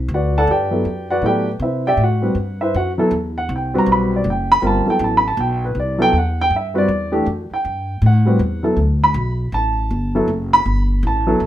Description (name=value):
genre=modal jazz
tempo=159 BPM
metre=4/4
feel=swing 64% on 8ths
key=G major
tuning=A4 = 435 Hz
part: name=upright bass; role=bass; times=0.0-11.5 s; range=F#1 to C3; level=-20 LUFS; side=equal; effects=none
part: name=dark upright piano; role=accompaniment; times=0.1-11.5 s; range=E3 to B5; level=-17 LUFS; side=equal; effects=none
room=moderate studio reverb, RT60 0.8 s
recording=none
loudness=-15 LUFS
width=side -12 dB against mid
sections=0.0-11.5 A section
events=none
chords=0.0 Gmaj9; 1.6 Cmaj9; 7.6 Gmaj9